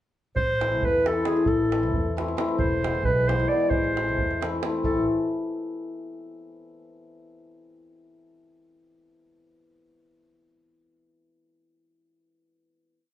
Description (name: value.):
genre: balkan folk, Balkan wedding band.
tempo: 269 BPM (eighths).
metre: 5/8.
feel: straight.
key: A harmonic minor.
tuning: A4 = 440 Hz.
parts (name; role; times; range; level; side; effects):
warm clarinet; melody; 0.4-5.1 s; G#4 to D5; -25 LUFS; right 1 dB; none.
upright bass; bass; 0.4-5.1 s; E1 to E2; -31 LUFS; right 1 dB; none.
davul; percussion; 0.4-5.1 s; none; -30 LUFS; right 2 dB; none.
cimbalom; accompaniment; 0.6-5.1 s; E3 to E4; -26 LUFS; left 3 dB; none.
room: wet large studio reverb, RT60 0.9 s.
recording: band playing live in one room.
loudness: -22 LUFS.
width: side -13 dB against mid.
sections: 0.4-4.8 A section; 4.8-5.9 final chord.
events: none.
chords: 0.4 Am; 2.6 E; 3.7 Am.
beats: | 0.37 0.59 0.81 1.04 1.26 | 1.48 1.71 1.93 2.15 2.37 | 2.60 2.82 3.04 3.27 3.49 | 3.71 3.94 4.16 4.38 4.61 | 4.83 5.05.